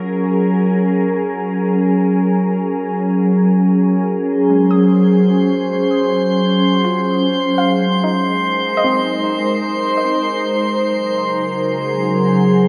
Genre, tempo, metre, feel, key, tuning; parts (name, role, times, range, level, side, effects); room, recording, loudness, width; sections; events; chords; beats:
ambient; free time; A4 = 440 Hz
glassy FM pad; sustained chords; 0.0-12.7 s; Db3 to C5; -17 LUFS; equal; ensemble chorus, built-in reverb
drifting glass-harmonics texture; texture; 4.9-12.7 s; C5 to C6; -22 LUFS; equal; chorus, built-in reverb
soft round pluck; arpeggios; 4.5-11.3 s; Ab3 to Eb6; -28 LUFS; equal; lush chorus, cassette tape, tape echo
wet cathedral reverb, RT60 4.6 s; in a vast, echoing space; -16 LUFS; mono
0.0-4.3 A section; 4.3-12.7 B section
fade-in on synth pluck 4.3-12.7; fade-out on synth texture 4.3-12.7
0.0 Gb; 4.3 Gbsus2; 7.5 Abadd9; 10.7 Gbadd9
free time